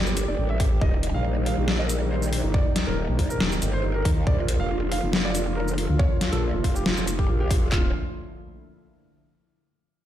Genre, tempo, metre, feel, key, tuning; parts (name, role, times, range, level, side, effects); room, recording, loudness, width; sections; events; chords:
heavy wobble dubstep; 139 BPM; 4/4; swing 53% on 16ths, half-time; A4 = 441 Hz
warm concert grand piano; melody; 0.0-7.9 s; Eb4 to F5; -31 LUFS; right 1 dB; digital delay
lush unison pad; sustained chords; 0.0-7.9 s; D3 to G4; -32 LUFS; left 1 dB; chorus, sidechain pumping
growl bass; bass; 0.0-7.9 s; D1 to Eb2; -25 LUFS; equal; chorus, overdrive
dubstep drum kit; drums; 0.1-7.6 s; hi-hat, shaker, snare drum; -27 LUFS; left 1 dB; overdrive
dubstep drum kit; drums; 0.6-7.8 s; handclaps, kick drum; -23 LUFS; equal; overdrive
light reverb; played on a big sound system in a bare room, large studio reverb; -21 LUFS; side -12 dB against mid
0.0-7.7 A section; 7.7-9.4 B section
0.0 Gm; 0.8 Eb; 4.3 Bb; 7.7 Dmadd9